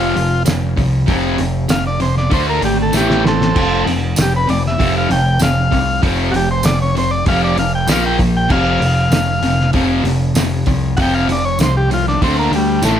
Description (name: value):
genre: garage rock duo or trio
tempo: 97 BPM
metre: 4/4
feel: straight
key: unclear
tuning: A4 = 441 Hz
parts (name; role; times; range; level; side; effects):
- overdriven combo organ; melody; 0.0-13.0 s; G3 to G5; -19 LUFS; equal; plate reverb, tape echo
- fuzz guitar; riff; 0.0-13.0 s; F2 to D4; -17 LUFS; equal; distortion
- growling picked electric bass; bass; 0.0-13.0 s; F1 to D2; -20 LUFS; equal; overdrive
- cloth-damped thuddy drum kit; drums; 0.2-13.0 s; crash cymbal, hi-hat, kick drum, snare drum; -20 LUFS; equal; none
- tambourine; percussion; 0.5-13.0 s; none; -26 LUFS; right 4 dB; none
room: light reverb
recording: none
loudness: -13 LUFS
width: side -9 dB against mid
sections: 0.0-13.0 A section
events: transistor combo organ solo 0.0-13.0; drum fill 2.9-3.5, 12.8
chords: 0.0 F5; 2.3 D5; 2.9 A5; 3.5 F5; 7.9 Bb5; 8.5 F5; 12.2 D5